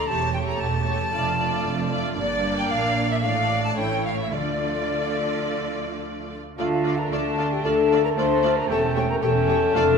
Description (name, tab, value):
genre	quick classical-period movement for symphony orchestra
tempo	106-116 BPM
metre	4/4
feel	rubato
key	D minor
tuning	A4 = 440 Hz
part	rich studio violin section	melody	0.0-9.8 s	C#5 to D5	-33 LUFS	equal	none
part	rich studio violin section	second line	0.0-10.0 s	A3 to Bb5	-33 LUFS	left 2 dB	none
part	silver concert flute	second line	0.0-10.0 s	D5 to C6	-28 LUFS	left 1 dB	none
part	rich studio viola section	accompaniment	0.0-9.8 s	A3 to G4	-30 LUFS	right 1 dB	none
part	mellow French horn section	sustained chords	0.0-10.0 s	E3 to C5	-26 LUFS	left 5 dB	none
part	rich studio cello section	bass	0.0-10.0 s	E2 to D3	-30 LUFS	right 4 dB	none
part	rich studio double bass section	bass	0.0-10.0 s	E1 to D2	-30 LUFS	right 5 dB	none
part	timpani	percussion	4.3-5.1 s	D3	-35 LUFS	left 2 dB	none
part	mellow clarinet	second line	6.6-10.0 s	C#4 to D4	-35 LUFS	right 2 dB	none
part	mellow cor anglais	second line	6.6-10.0 s	F5 to A5	-31 LUFS	right 6 dB	none
part	warm bassoon	accompaniment	6.6-10.0 s	A3	-32 LUFS	right 2 dB	none
room	wet scoring stage reverb, RT60 1.6 s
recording	minimal, uncompressed stereo recording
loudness	-21 LUFS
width	side -6 dB against mid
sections	0.0-6.6 A section; 6.6-10.0 B section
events	none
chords	0.1 A7/E; 1.1 Dm/F; 2.2 Gm; 3.2 Dm/A; 3.8 A7; 4.3 Dm; 8.7 A7/E